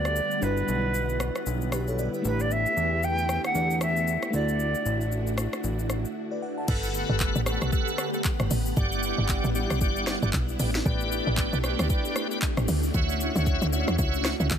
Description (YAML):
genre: amapiano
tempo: 115 BPM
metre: 4/4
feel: swing 58% on 16ths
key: D major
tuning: A4 = 440 Hz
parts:
  - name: silver concert flute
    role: melody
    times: 0.0-5.3 s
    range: B4 to G5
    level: -28 LUFS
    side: right 1 dB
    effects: ping-pong delay
  - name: bell-like FM electric piano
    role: accompaniment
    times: 0.0-6.8 s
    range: G3 to A5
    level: -33 LUFS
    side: left 2 dB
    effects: chorus
  - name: soft string machine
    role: sustained chords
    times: 0.0-14.6 s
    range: D3 to F#5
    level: -32 LUFS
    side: equal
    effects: ensemble chorus, sidechain pumping
  - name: fat analog bass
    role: bass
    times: 0.0-6.1 s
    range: G1 to E2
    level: -28 LUFS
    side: equal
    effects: none
  - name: afro-pop drum kit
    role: drums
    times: 0.1-14.6 s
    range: crash cymbal, handclaps, hi-hat, kick drum, rim click, shaker, snare drum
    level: -29 LUFS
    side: equal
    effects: none
  - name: bright tonewheel organ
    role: stabs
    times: 6.7-14.5 s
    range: G4 to G5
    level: -31 LUFS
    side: equal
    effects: overdrive, chorus vibrato, slow rotary speaker, ping-pong delay
  - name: woody log drum bass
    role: bass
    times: 6.7-14.6 s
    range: G1 to E2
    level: -27 LUFS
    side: equal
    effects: none
room: digital ambience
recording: none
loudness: -24 LUFS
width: side -8 dB against mid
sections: 0.0-6.7 A section; 6.7-14.6 B section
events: break 6.2-6.7; drop 6.7-14.6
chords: 0.4 Em9/G; 2.2 A9sus4; 4.3 Dadd9; 6.7 Gmaj9; 8.8 Em9/G; 10.6 A9sus4; 12.7 Dmaj9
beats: | 0.42 0.94 1.47 1.99 | 2.51 3.03 3.55 4.07 | 4.60 5.12 5.64 6.16 | 6.68 7.20 7.73 8.25 | 8.77 9.29 9.81 10.34 | 10.86 11.38 11.90 12.42 | 12.94 13.46 13.99 14.51